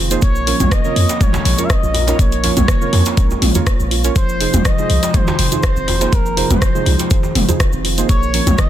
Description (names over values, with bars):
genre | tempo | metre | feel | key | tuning
afro house | 122 BPM | 4/4 | swing 54% on 16ths | F minor | A4 = 440 Hz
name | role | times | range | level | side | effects
handpan | arpeggios | 0.0-8.7 s | C3 to Bb4 | -22 LUFS | right 1 dB | sidechain pumping, ping-pong delay
deep mellow chord stab | stabs | 0.0-8.5 s | Db4 to Db5 | -24 LUFS | right 6 dB | chorus, sidechain pumping, ping-pong delay
warm 808-style bass | bass | 0.0-8.5 s | F1 to F2 | -18 LUFS | equal | sidechain pumping
deep house drum kit | drums | 0.1-8.7 s | hi-hat, rim click, toms | -19 LUFS | equal | none
cabasa | percussion | 0.1-8.7 s | none | -29 LUFS | right 3 dB | none
expressive synth lead | melody | 0.2-8.7 s | Bb4 to F5 | -23 LUFS | left 1 dB | chorus, ping-pong delay
electronic kick drum | drums | 0.2-8.7 s | none | -15 LUFS | equal | none
djembe | percussion | 0.6-8.6 s | none | -24 LUFS | right 1 dB | none
room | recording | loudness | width
little or no reverb | dense, heavily limited modern master | -13 LUFS | side -11 dB against mid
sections
0.0-8.7 A section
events
none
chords
0.2 Bbm; 4.2 Fm7; 8.1 Bbm